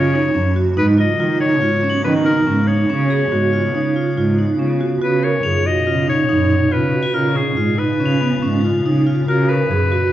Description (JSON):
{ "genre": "contemporary instrumental, chamber music in an uneven meter", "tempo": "141 BPM", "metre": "5/4", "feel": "straight", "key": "Db mixolydian", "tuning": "A4 = 440 Hz", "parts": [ { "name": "bright clarinet", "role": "melody", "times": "0.0-10.1 s", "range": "Ab4 to Eb5", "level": "-21 LUFS", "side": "left 4 dB", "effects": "none" }, { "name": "icy glass pad", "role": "sustained chords", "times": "0.0-10.1 s", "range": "Bb2 to Gb4", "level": "-24 LUFS", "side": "left 3 dB", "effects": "chorus, built-in reverb" }, { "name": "vibraphone with medium mallets", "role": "arpeggios", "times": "0.0-10.1 s", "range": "Cb4 to Bb4", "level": "-20 LUFS", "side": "right 4 dB", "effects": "none" }, { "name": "rich cello", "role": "bass", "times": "0.0-9.9 s", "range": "Gb2 to Eb3", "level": "-19 LUFS", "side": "right 1 dB", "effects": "none" }, { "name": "crotales", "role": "texture", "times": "1.9-8.7 s", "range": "F7 to Ab7", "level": "-32 LUFS", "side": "left 6 dB", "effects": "none" } ], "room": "moderate recital hall reverb, RT60 1.3 s", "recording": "dark, warm production, nothing above 7.7 kHz", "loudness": "-14 LUFS", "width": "side -12 dB against mid", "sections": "0.0-5.0 A section; 5.0-10.1 B section", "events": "none", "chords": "0.0 Gb; 0.8 Abm11; 2.9 Db7; 5.0 Cbmaj7; 7.2 Db7; 9.3 Cbmaj7" }